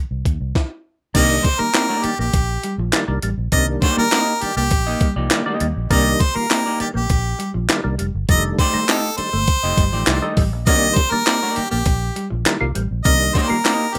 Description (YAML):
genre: funk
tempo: 101 BPM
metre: 4/4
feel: straight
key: unclear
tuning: A4 = 440 Hz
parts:
  - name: vintage muted fingered electric bass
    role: bass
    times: 0.1-14.0 s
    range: F1 to Eb2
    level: -25 LUFS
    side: equal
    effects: none
  - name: breakbeat sampler-style drum kit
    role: drums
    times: 0.3-14.0 s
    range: crash cymbal, handclaps, hi-hat, kick drum, snare drum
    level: -21 LUFS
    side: equal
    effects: none
  - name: semi-hollow electric guitar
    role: accompaniment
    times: 1.1-13.9 s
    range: A3 to Eb5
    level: -27 LUFS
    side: equal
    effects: spring reverb
  - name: electric guitar at the edge of break-up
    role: riff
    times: 1.1-14.0 s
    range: F3 to C4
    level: -30 LUFS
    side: equal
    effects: none
  - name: percussive tonewheel organ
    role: stabs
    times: 1.1-14.0 s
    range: Eb3 to F4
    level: -27 LUFS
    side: equal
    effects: chorus vibrato, slow rotary speaker
  - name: bright harmonica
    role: melody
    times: 1.2-14.0 s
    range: G4 to Eb5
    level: -22 LUFS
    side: equal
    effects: none
  - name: group handclap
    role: percussion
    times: 1.7-13.8 s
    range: none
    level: -31 LUFS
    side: equal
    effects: none
room: light reverb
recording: rough home demo mix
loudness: -19 LUFS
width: mono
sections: 0.0-1.1 A section; 1.1-14.0 B section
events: break 0.0-1.1; stop 0.6-1.1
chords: 0.0 F7(no3) (rootless); 1.1 F13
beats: 0.55 | 1.15 1.74 2.34 2.93 | 3.53 4.12 4.72 5.31 | 5.91 6.50 7.10 7.69 | 8.29 8.88 9.48 10.07 | 10.67 11.27 11.86 12.46 | 13.05 13.65